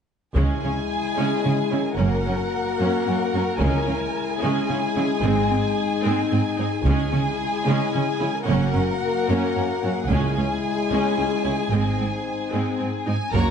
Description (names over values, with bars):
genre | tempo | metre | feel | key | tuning
cinematic, epic orchestral film score | 74 BPM (dotted quarters) | 6/8 | straight | C# dorian | A4 = 439 Hz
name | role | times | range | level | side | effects
rich studio violin section | second line | 0.4-13.5 s | G#4 to G#5 | -27 LUFS | left 1 dB | none
rich symphonic viola section | accompaniment | 0.4-13.5 s | G#3 to F#4 | -27 LUFS | right 2 dB | none
warm French horn section | sustained chords | 0.4-13.5 s | G#3 to F#4 | -26 LUFS | left 7 dB | none
clear symphonic double bass section | bass | 0.4-13.4 s | F#1 to C#2 | -27 LUFS | right 3 dB | none
rich studio cello section | bass | 0.4-13.4 s | C#2 to C#3 | -26 LUFS | right 3 dB | none
taiko ensemble | drums | 0.4-13.5 s | none | -26 LUFS | left 1 dB | none
warm symphonic violin section | melody | 13.1-13.5 s | G#5 to A#5 | -29 LUFS | left 2 dB | none
room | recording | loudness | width
wet scoring stage reverb, RT60 1.8 s | nothing above 10.3 kHz | -20 LUFS | side -7 dB against mid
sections
0.4-13.3 A section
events
build-up 0.4-13.3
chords
0.4 C#m; 2.0 F#; 3.6 C#m; 5.2 G#; 6.9 C#m; 8.5 F#; 10.1 C#m; 11.7 G#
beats
| 0.36 1.17 | 1.99 2.80 | 3.61 4.42 | 5.23 6.04 | 6.85 7.67 | 8.48 9.29 | 10.10 10.91 | 11.72 12.53 | 13.34